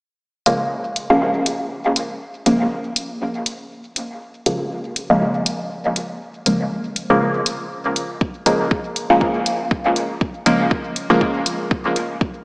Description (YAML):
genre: dub techno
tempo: 120 BPM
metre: 4/4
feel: swing 56% on 16ths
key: Bb minor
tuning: A4 = 442 Hz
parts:
  - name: filtered dub chord stab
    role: stabs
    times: 0.5-11.4 s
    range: Db3 to Bb3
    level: -18 LUFS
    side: equal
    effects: phaser, dub echo
  - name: electronic hi-hat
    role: drums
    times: 0.5-12.1 s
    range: none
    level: -23 LUFS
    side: equal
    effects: studio reverb
  - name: electronic kick drum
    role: drums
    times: 8.2-12.3 s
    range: none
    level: -20 LUFS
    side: equal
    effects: studio reverb
room: wet lush hall reverb, RT60 2.4 s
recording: dreamy mix soaked in reverb, small speaker sound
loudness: -17 LUFS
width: side -33 dB against mid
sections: 0.2-12.4 A section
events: filter sweep on synth stab 0.2-12.4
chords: 0.2 Bbm7